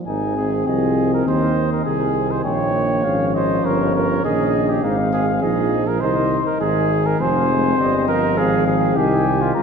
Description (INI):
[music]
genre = classical, brass quintet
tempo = 101 BPM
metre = 4/4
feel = rubato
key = Ab major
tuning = A4 = 441 Hz
[part]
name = warm trombone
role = accompaniment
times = 0.0-9.6 s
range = Db3 to Ab3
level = -26 LUFS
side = right 2 dB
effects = none
[part]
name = mellow cornet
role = melody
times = 0.1-9.6 s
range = Db5 to Bb5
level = -25 LUFS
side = left 8 dB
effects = none
[part]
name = dark trumpet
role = second line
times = 0.1-9.6 s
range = Eb4 to Db5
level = -22 LUFS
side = right 4 dB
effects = none
[part]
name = mellow French horn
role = accompaniment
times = 0.1-9.6 s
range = Bb3 to F4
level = -24 LUFS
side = left 4 dB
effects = none
[part]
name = warm tuba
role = bass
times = 0.1-9.6 s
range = F1 to Eb2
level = -22 LUFS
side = right 2 dB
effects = none
[sound]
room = wet concert hall reverb, RT60 1.8 s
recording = dark, warm production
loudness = -16 LUFS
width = side -6 dB against mid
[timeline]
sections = 0.1-9.6 A section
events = none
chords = 0.1 Ab; 2.4 Eb7; 4.8 Ab; 7.2 Fm